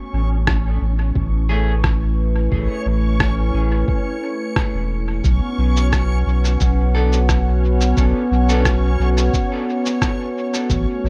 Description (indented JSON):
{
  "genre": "ambient dub",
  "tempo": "88 BPM",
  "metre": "4/4",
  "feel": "straight",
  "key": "unclear",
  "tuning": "A4 = 440 Hz",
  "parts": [
    { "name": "warm analog pad", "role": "sustained chords", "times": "0.0-11.1 s", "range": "A3 to F#5", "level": "-26 LUFS", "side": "equal", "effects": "chorus" },
    { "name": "backwards swelling texture", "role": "texture", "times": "0.0-11.1 s", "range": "C#4 to C#6", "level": "-32 LUFS", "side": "equal", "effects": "built-in reverb" },
    { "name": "soft dub sub bass", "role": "bass", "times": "0.1-11.1 s", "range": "E1 to B1", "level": "-20 LUFS", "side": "equal", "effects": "none" },
    { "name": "electronic kick drum", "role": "drums", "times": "0.5-10.8 s", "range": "none", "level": "-24 LUFS", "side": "equal", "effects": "none" },
    { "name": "electronic rim click and cabasa", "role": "drums", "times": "0.5-10.8 s", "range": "none", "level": "-27 LUFS", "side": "equal", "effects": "dub echo" },
    { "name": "electric guitar at the edge of break-up", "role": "stabs", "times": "1.5-1.7, 6.9-8.6 s", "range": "A3 to A4", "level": "-32 LUFS", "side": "equal", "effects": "harmonic tremolo, dub echo" }
  ],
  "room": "little or no reverb",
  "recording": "echo-heavy mix",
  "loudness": "-18 LUFS",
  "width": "mono",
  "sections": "0.0-11.1 A section",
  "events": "fade-in on analog synth pad 0.0-11.1",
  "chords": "0.0 A; 5.2 B5",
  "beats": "0.47 1.16 1.84 | 2.52 3.20 3.88 4.57 | 5.25 5.93 6.61 7.29 | 7.97 8.66 9.34 10.02 | 10.70"
}